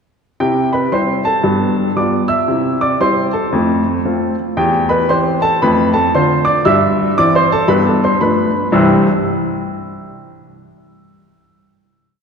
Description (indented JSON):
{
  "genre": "jazz, stride piano",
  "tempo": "115 BPM",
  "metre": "4/4",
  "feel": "swing 61% on 8ths",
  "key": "C major",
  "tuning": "A4 = 441 Hz",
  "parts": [
    { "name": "clear upright piano", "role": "solo", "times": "0.4-9.1 s", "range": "C2 to E6", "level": "-12 LUFS", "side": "equal", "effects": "none" }
  ],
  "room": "wet church reverb, RT60 2.7 s",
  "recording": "recorded in a church or concert hall",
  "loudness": "-12 LUFS",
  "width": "side -6 dB against mid",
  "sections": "0.4-8.7 A section; 8.7-10.8 final chord",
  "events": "none",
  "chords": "0.4 C; 1.4 G9; 2.5 C; 3.5 F; 4.6 C/E; 5.6 F6; 6.7 C/G; 7.7 G9; 8.7 C",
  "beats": "| 0.41 0.93 1.45 1.97 | 2.49 3.01 3.53 4.05 | 4.57 5.09 5.61 6.13 | 6.65 7.17 7.69 8.21 | 8.73"
}